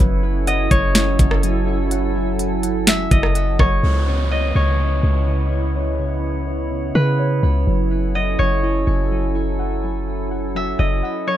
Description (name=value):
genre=hip hop, atmospheric cloud-rap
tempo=125 BPM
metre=4/4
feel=half-time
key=C# minor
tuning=A4 = 439 Hz
part: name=concert harp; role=melody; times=0.0-11.4 s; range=B4 to E5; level=-24 LUFS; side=equal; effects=low-pass filter, digital delay
part: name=warbly tape-like pad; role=sustained chords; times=0.0-11.4 s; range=C#3 to G#5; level=-25 LUFS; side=right 4 dB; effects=chorus, built-in reverb
part: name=muted felt-like synth keys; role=arpeggios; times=0.0-11.4 s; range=C#3 to F#5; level=-29 LUFS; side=left 4 dB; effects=chorus, low-pass filter, digital delay
part: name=warm 808-style bass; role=bass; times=0.0-11.0 s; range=F#1 to C#3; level=-20 LUFS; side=equal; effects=none
part: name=drifting glass-harmonics texture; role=texture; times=0.0-11.4 s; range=F#3 to C#5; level=-33 LUFS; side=right 1 dB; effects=chorus, built-in reverb
part: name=trap drum kit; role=drums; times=0.5-3.7 s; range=hi-hat, kick drum, rim click, snare drum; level=-16 LUFS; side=equal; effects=overdrive
part: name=downlifter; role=sound effects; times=3.8-7.7 s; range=none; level=-32 LUFS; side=right 1 dB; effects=none
room=light reverb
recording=none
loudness=-16 LUFS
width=side -12 dB against mid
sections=0.0-3.8 A section; 3.8-11.4 B section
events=break 11.0-11.4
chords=0.0 F#m7; 3.8 C#m7; 7.7 F#m7